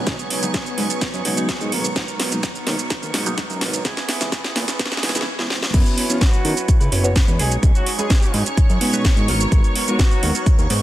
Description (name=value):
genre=filtered disco house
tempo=127 BPM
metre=4/4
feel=straight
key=F# mixolydian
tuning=A4 = 440 Hz
part: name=reed electric piano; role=accompaniment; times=0.0-10.8 s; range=B2 to C#5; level=-26 LUFS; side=equal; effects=overdrive, fast tremolo, phaser, sidechain pumping, low-pass filter
part: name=string machine, full ensemble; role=sustained chords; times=0.0-10.8 s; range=B3 to C#6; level=-29 LUFS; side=equal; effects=ensemble chorus, sidechain pumping, low-pass filter
part: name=electric guitar through a small old amp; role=riff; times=0.0-10.8 s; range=F#3 to B4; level=-29 LUFS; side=right 3 dB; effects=sidechain pumping, low-pass filter
part: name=fat analog bass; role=bass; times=0.1-10.8 s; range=F#1 to D#3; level=-23 LUFS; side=equal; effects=sidechain pumping, low-pass filter
part: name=electronic kick drum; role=drums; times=0.1-10.6 s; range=none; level=-17 LUFS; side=equal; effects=none
part: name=house drum kit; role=drums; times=0.1-10.8 s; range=crash cymbal, hi-hat, shaker, snare drum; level=-23 LUFS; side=right 1 dB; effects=sidechain pumping on hats, sidechain pumping on perc, sidechain pumping on cymbals
part: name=warm horn section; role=melody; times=6.1-10.5 s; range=F#3 to G#4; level=-28 LUFS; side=equal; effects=sidechain pumping, low-pass filter
room=light reverb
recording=dense, heavily limited modern master, high-pass filter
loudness=-17 LUFS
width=side -14 dB against mid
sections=0.0-5.7 A section; 5.7-10.8 B section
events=build-up 0.0-5.7; drum fill 0.0-5.3, 5.4-5.7; filter sweep 0.0-5.7; drop 5.7-10.8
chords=0.0 B69; 1.7 G#m9; 3.9 C#m7; 5.7 F#7sus4; 7.4 B69; 9.3 G#m9